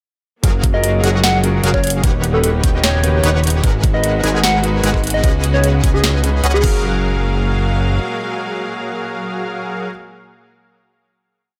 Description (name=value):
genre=future bass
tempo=150 BPM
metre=4/4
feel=half-time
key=F# major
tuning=A4 = 441 Hz
part: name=warm concert grand piano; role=accompaniment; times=0.4-9.9 s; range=C#3 to E#5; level=-28 LUFS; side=equal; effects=sidechain pumping
part: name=clear studio string section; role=sustained chords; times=0.4-9.9 s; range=A#2 to E#5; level=-30 LUFS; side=equal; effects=sidechain pumping
part: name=supersaw stab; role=riff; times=0.4-9.9 s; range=D#3 to G#5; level=-25 LUFS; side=equal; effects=sidechain pumping
part: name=fat analog bass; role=bass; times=0.4-8.0 s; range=D#1 to C#2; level=-19 LUFS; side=equal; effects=sidechain pumping
part: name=electronic kick drum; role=drums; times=0.4-6.7 s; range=none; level=-18 LUFS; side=equal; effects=none
part: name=trap drum kit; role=drums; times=0.4-6.7 s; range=crash cymbal, hi-hat, snare drum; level=-22 LUFS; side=equal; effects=none
part: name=soft struck synth lead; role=melody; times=0.7-6.8 s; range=G#4 to F#5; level=-23 LUFS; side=equal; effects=chorus, sidechain pumping, delay
part: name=thumb-piano-like synth pluck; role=arpeggios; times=3.6-7.0 s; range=D#4 to G#5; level=-33 LUFS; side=equal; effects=none
room=light reverb, digital ambience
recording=none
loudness=-16 LUFS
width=mono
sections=0.4-6.8 drop; 6.8-10.0 final hit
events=drop 0.4-6.8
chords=0.4 F#maj9; 2.0 D#7alt; 3.6 G#m7; 5.2 C#7sus4; 6.6 F#maj9